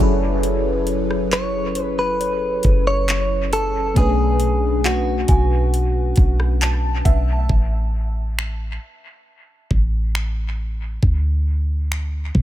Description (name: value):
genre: contemporary R&B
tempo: 68 BPM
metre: 4/4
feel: straight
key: F# minor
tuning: A4 = 441 Hz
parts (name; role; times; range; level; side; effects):
- FM electric piano with soft pad layer; accompaniment; 0.0-7.5 s; B2 to A5; -23 LUFS; left 1 dB; chorus, phaser, dub echo
- clean 808-style bass; bass; 0.0-12.4 s; F#1 to A2; -20 LUFS; equal; none
- smooth R&B drum kit; drums; 0.0-12.4 s; finger snaps, handclaps, hi-hat, kick drum, rim click; -20 LUFS; equal; dub echo
- small celesta; texture; 0.0-8.1 s; C#5 to A5; -34 LUFS; right 1 dB; dub echo
- direct-recorded clean electric guitar; melody; 1.3-6.6 s; F#4 to C#5; -22 LUFS; equal; dub echo
room: digital ambience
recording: echo-heavy mix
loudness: -17 LUFS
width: side -13 dB against mid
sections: 0.0-7.5 A section; 7.5-12.4 B section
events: FM electric piano fill 0.0-0.4, 6.2-7.5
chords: 0.0 F#m11; 4.0 Bm9; 7.5 N.C.; 11.0 D5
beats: | 0.44 1.32 2.20 3.08 | 3.97 4.85 5.73 6.61 | 7.50 8.38 9.26 10.14 | 11.03 11.91